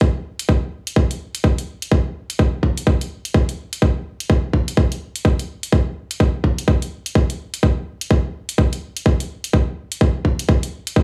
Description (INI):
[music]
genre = house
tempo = 126 BPM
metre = 4/4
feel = swing 61% on 16ths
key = none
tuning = none
[part]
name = electronic kick drum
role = drums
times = 0.0-11.0 s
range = none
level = -18 LUFS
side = equal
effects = none
[part]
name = electronic hi-hat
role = drums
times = 0.4-10.9 s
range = none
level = -29 LUFS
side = equal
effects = none
[sound]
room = little or no reverb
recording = studio reverb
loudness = -20 LUFS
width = mono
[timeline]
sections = 0.0-11.0 A section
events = none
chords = none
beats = | 0.01 0.49 0.96 1.44 | 1.92 2.39 2.87 3.34 | 3.82 4.30 4.77 5.25 | 5.72 6.20 6.68 7.15 | 7.63 8.11 8.58 9.06 | 9.53 10.01 10.49 10.96